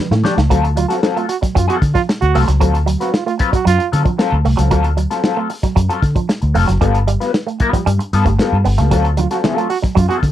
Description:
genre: funk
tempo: 114 BPM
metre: 4/4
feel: straight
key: D mixolydian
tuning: A4 = 440 Hz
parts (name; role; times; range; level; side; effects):
- mellow electric guitar; accompaniment; 0.1-10.3 s; F#3 to D5; -20 LUFS; left 5 dB; wah
- electric guitar with an envelope filter; riff; 0.1-10.1 s; E#3 to B3; -21 LUFS; right 8 dB; none
- vintage muted fingered electric bass; bass; 0.1-10.3 s; E#1 to D3; -15 LUFS; equal; none
- warm soul drum kit; drums; 0.1-10.3 s; hi-hat, kick drum, snare drum; -19 LUFS; equal; none
- congas; percussion; 0.2-0.4, 9.2-10.3 s; none; -24 LUFS; right 7 dB; none
- clear trombone; second line; 0.8-3.9, 9.2-10.2 s; E#4 to F#4; -19 LUFS; right 8 dB; none
room: little or no reverb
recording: dry, close 1970s-style studio recording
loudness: -13 LUFS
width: side -12 dB against mid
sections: 0.5-10.3 A section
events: drum fill 0.0-0.5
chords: 0.0 A7sus4; 0.5 D7#9; 6.8 G9; 8.9 D7#9

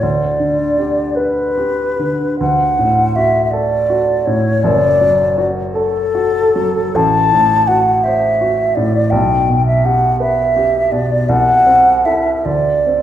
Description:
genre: classical, romantic duo for flute and grand piano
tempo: 46-56 BPM (dotted quarters)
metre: 6/8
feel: rubato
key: D major, G major from 6.9 s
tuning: A4 = 440 Hz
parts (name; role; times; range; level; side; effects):
- mellow hollow concert flute; melody; 0.0-13.0 s; A4 to A5; -13 LUFS; equal; none
- warm baby grand piano; accompaniment; 0.0-13.0 s; F#1 to C5; -17 LUFS; right 1 dB; none
room: wet recital hall reverb, RT60 1.6 s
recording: recorded in a church or concert hall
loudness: -12 LUFS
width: side -11 dB against mid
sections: 0.0-13.0 A section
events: none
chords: 0.0 G/D; 2.4 D; 4.6 D/F#; 6.9 Am6; 9.1 G/B; 11.3 Am/C; 12.5 D7(no3)

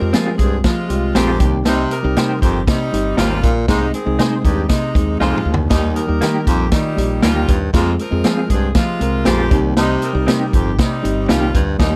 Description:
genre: uptempo 1960s-style soul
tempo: 118 BPM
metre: 4/4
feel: straight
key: unclear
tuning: A4 = 439 Hz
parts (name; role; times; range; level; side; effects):
- clear saxophone section; second line; 0.0-12.0 s; Bb2 to Bb4; -26 LUFS; equal; none
- mellow tine electric piano; accompaniment; 0.0-12.0 s; G3 to Bb4; -24 LUFS; equal; none
- woody fretless electric bass; bass; 0.0-12.0 s; G1 to F3; -23 LUFS; equal; lush chorus
- electric guitar through a small old amp; stabs; 0.1-11.4 s; Bb3 to C5; -25 LUFS; equal; tremolo
- vintage drum kit; drums; 0.1-11.9 s; hi-hat, kick drum, snare drum, toms; -20 LUFS; equal; none
- breathy baritone saxophone; riff; 0.4-12.0 s; Eb2 to C3; -23 LUFS; equal; none
room: light reverb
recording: none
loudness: -16 LUFS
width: mono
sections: 0.0-12.0 A section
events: drum fill 5.2-5.7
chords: 0.0 Fm; 1.4 Cm; 3.7 Ab/C; 5.7 Eb; 7.7 Fm; 9.5 Cm

